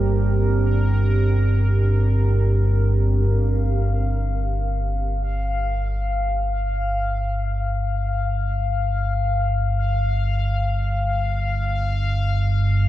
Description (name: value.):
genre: dark ambient drone.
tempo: free time.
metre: none.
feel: none.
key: unclear.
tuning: A4 = 440 Hz.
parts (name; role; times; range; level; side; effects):
deep dark ambient pad; sustained chords; 0.0-3.3 s; C4 to Bb4; -28 LUFS; right 2 dB; chorus, built-in reverb.
deep rumbling drone; drone; 0.0-12.9 s; G1 to G2; -20 LUFS; equal; built-in reverb, lush chorus.
bubbling stepped-filter texture; texture; 0.0-12.9 s; Bb4 to F5; -28 LUFS; left 3 dB; chorus, built-in reverb.
room: wet cathedral reverb, RT60 5.3 s.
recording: dark, warm production.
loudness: -19 LUFS.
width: side -14 dB against mid.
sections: 0.0-3.3 A section; 3.3-12.9 B section.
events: none.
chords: 0.0 Gm; 3.3 Fsus2/G.